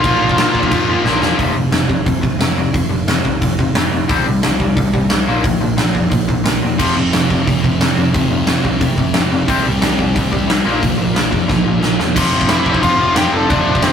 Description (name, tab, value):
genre	punk rock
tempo	178 BPM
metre	4/4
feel	straight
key	unclear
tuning	A4 = 441 Hz
part	bluesy overdriven lead guitar	melody	0.0-1.0, 12.5-13.9 s	C4 to A5	-17 LUFS	equal	distortion
part	biting overdriven guitar	riff	0.0-13.9 s	F2 to C4	-20 LUFS	left 4 dB	none
part	distorted electric guitar	riff	0.0-12.1 s	F2 to C4	-22 LUFS	right 3 dB	distortion
part	thick fuzz guitar	riff	0.0-1.4, 6.8-13.9 s	F2 to C4	-20 LUFS	right 1 dB	distortion
part	overdriven picked electric bass	bass	0.0-13.9 s	E1 to Bb2	-24 LUFS	right 1 dB	none
part	big rock drum kit	drums	0.0-13.9 s	crash cymbal, hi-hat, kick drum, snare drum	-16 LUFS	equal	none
room	light reverb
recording	rough rehearsal-room recording, tube saturation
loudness	-13 LUFS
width	side -8 dB against mid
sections	0.0-1.4 A section; 1.4-12.2 B section; 12.2-13.9 A section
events	drum fill 1.1-1.4, 11.5-12.2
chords	0.0 Bb5; 1.4 F5; 4.1 C5; 5.3 Bb5; 6.8 F5; 9.5 C5; 10.7 Bb5; 12.2 F5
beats	| 0.04 0.38 0.72 1.05 | 1.39 1.73 2.07 2.41 | 2.75 3.08 3.42 3.76 | 4.10 4.44 4.77 5.11 | 5.45 5.79 6.12 6.46 | 6.80 7.14 7.47 7.81 | 8.15 8.48 8.82 9.15 | 9.49 9.82 10.16 10.49 | 10.83 11.16 11.49 11.83 | 12.16 12.50 12.83 13.16 | 13.50 13.83